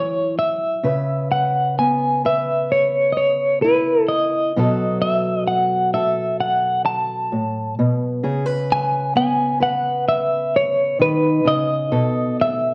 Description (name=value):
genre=acoustic folk-pop ballad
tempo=65 BPM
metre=4/4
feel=straight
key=C# minor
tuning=A4 = 440 Hz
part: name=clean electric guitar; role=melody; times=0.0-12.7 s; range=B4 to A5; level=-21 LUFS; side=equal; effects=tremolo
part: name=fingerpicked old ladder-braced acoustic guitar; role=accompaniment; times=0.0-12.7 s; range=A2 to B4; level=-24 LUFS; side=equal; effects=none
room=wet large studio reverb, RT60 1.2 s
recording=worn, warbling old tape, cassette tape, warbly pitch drift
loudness=-19 LUFS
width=mono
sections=0.8-12.7 A section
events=none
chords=0.0 F#5; 0.8 C#m7; 4.6 B5; 8.2 C#5; 11.9 B7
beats=| 0.85 1.78 2.71 3.64 | 4.56 5.49 6.41 7.33 | 8.25 9.17 10.09 11.01 | 11.94